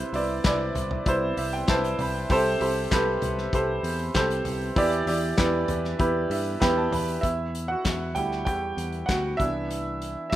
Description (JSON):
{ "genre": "piano-driven pop", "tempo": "97 BPM", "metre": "4/4", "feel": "straight", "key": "E minor", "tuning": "A4 = 441 Hz", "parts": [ { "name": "clear upright piano", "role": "accompaniment", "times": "0.0-10.4 s", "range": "C3 to B5", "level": "-25 LUFS", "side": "right 1 dB", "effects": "none" }, { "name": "picked electric bass", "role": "bass", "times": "0.0-10.4 s", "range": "C2 to G2", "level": "-31 LUFS", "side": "left 1 dB", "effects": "none" }, { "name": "loose indie drum kit", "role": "drums", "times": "0.1-10.4 s", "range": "handclaps, hi-hat, kick drum, snare drum, toms", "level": "-28 LUFS", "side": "left 1 dB", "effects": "none" } ], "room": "little or no reverb", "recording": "rough home demo mix", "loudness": "-23 LUFS", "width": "side -13 dB against mid", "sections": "0.0-7.2 A section; 7.2-10.4 B section", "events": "upright piano fill 1.1-2.3, 6.0-7.2; upright piano solo 7.2-10.4", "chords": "0.0 Cmaj7; 2.3 Am7/C; 4.8 Em7; 7.2 Emadd9; 9.4 Cmaj7" }